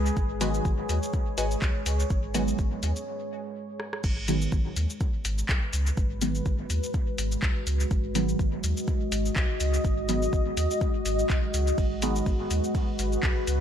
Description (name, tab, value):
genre	dub techno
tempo	124 BPM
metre	4/4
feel	swing 56% on 16ths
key	G# minor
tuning	A4 = 440 Hz
part	deep dark ambient pad	sustained chords	0.0-13.6 s	G#3 to D#5	-31 LUFS	left 1 dB	chorus, built-in reverb, sidechain pumping
part	pure sine sub bass	bass	0.0-13.6 s	G#1 to D#2	-28 LUFS	equal	tube saturation, sidechain pumping
part	soft vintage rhythm box	drums	0.1-13.6 s	crash cymbal, handclaps, hi-hat, ride cymbal, rim click, shaker	-34 LUFS	left 1 dB	dub echo
part	electronic kick drum	drums	0.2-13.3 s	none	-27 LUFS	equal	none
part	wavetable chord stab	riff	0.4-2.4 s	F#4 to G#5	-36 LUFS	left 2 dB	sidechain pumping, dub echo
part	deep mellow chord stab	stabs	0.4-12.3 s	D#3 to B3	-31 LUFS	right 2 dB	chorus, phaser, sidechain pumping, dub echo
room	light reverb, digital ambience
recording	none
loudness	-24 LUFS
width	side -9 dB against mid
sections	0.0-4.0 A section; 4.0-13.6 A section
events	filter sweep on synth stab 0.0-4.0; break 3.1-4.0; drum fill 3.8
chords	0.0 G#m7